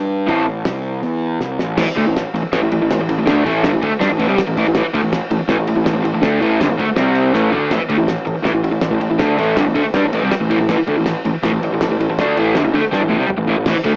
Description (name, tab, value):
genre	garage rock duo or trio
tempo	162 BPM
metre	4/4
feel	straight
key	A minor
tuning	A4 = 440 Hz
part	fuzz picked electric bass	bass	0.0-14.0 s	G1 to G2	-24 LUFS	equal	overdrive
part	crunchy overdriven guitar	riff	0.3-13.9 s	G2 to A4	-18 LUFS	equal	cassette tape
part	cloth-damped thuddy drum kit	drums	0.3-13.9 s	crash cymbal, hi-hat, kick drum, ride cymbal, snare drum, toms	-25 LUFS	equal	cassette tape
room	light reverb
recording	home recording on cassette, small speaker sound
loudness	-17 LUFS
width	mono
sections	0.0-1.8 A section; 1.8-7.7 B section; 7.7-14.0 C section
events	drum fill 1.4-1.8, 7.4-7.7, 12.9-13.7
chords	0.0 Am; 1.8 A5; 7.0 C5; 7.4 A5